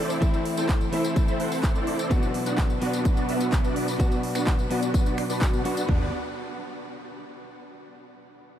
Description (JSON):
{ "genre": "EDM, festival progressive house", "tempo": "127 BPM", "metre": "4/4", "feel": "straight", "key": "G major", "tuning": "A4 = 441 Hz", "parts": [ { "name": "direct-recorded clean electric guitar", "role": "accompaniment", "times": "0.0-6.1 s", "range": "B2 to F#4", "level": "-30 LUFS", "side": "left 1 dB", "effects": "sidechain pumping, analog delay" }, { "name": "supersaw chords", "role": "riff", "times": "0.0-6.1 s", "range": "B3 to G5", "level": "-29 LUFS", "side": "equal", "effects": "ensemble chorus, sidechain pumping, low-pass filter, analog delay" }, { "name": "big-room dance drum kit", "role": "drums", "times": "0.1-5.9 s", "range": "finger snaps, handclaps, hi-hat, tambourine", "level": "-35 LUFS", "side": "equal", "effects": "none" }, { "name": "house drum kit", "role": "drums", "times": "0.2-6.0 s", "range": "kick drum, toms", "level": "-24 LUFS", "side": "equal", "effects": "none" }, { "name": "fat analog bass", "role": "bass", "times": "5.9-6.1 s", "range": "G1", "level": "-32 LUFS", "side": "equal", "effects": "none" } ], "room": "moderate huge ambient reverb, RT60 7.0 s", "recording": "dreamy mix soaked in reverb", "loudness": "-22 LUFS", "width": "side -10 dB against mid", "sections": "0.0-5.9 A section; 5.9-7.8 B section", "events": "filter sweep on supersaw synth 0.0-5.9", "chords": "0.0 Am; 2.1 Bm; 5.9 G" }